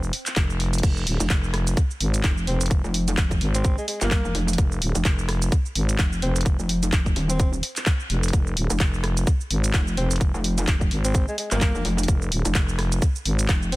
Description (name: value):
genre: bass house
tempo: 128 BPM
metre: 4/4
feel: swing 58% on 16ths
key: F minor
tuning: A4 = 439 Hz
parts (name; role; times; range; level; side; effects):
- growling FM bass; bass; 0.0-13.8 s; Eb1 to Ab1; -23 LUFS; equal; tube saturation, sidechain pumping
- garage drum kit; drums; 0.0-13.8 s; crash cymbal, handclaps, hi-hat, rim click, shaker; -28 LUFS; right 1 dB; none
- electronic kick drum; drums; 0.4-13.6 s; none; -22 LUFS; equal; none
- pulsing pluck wobble bass; bass; 1.2-13.7 s; Eb1 to G1; -24 LUFS; equal; chorus, overdrive, sidechain pumping
- warm alto saxophone; melody; 2.5-13.8 s; Ab3 to C4; -32 LUFS; equal; digital delay
room: digital ambience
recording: dense, heavily limited modern master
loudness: -20 LUFS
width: side -19 dB against mid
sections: 0.0-13.8 A section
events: none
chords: none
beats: 0.36 | 0.83 1.30 1.77 2.24 | 2.71 3.18 3.65 4.12 | 4.58 5.05 5.52 5.99 | 6.46 6.93 7.40 7.87 | 8.33 8.80 9.27 9.74 | 10.21 10.68 11.15 11.62 | 12.08 12.55 13.02 13.49